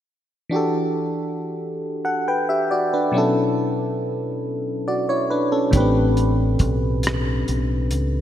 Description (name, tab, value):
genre	slow six-eight R&B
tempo	46 BPM (dotted quarters)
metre	6/8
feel	straight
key	E minor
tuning	A4 = 440 Hz
part	FM electric piano	accompaniment	0.5-8.2 s	A2 to G5	-20 LUFS	equal	chorus
part	deep dub fingered electric bass	bass	5.7-8.2 s	A1 to C#2	-22 LUFS	equal	none
part	cloth-damped thuddy drum kit	drums	5.7-8.1 s	hi-hat, kick drum, rim click	-23 LUFS	equal	none
room	moderate lush hall reverb, RT60 2.6 s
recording	bright 1980s-style digital production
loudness	-19 LUFS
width	side -10 dB against mid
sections	0.5-8.2 A section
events	none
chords	0.5 Em11; 3.1 Bm11; 5.7 Am11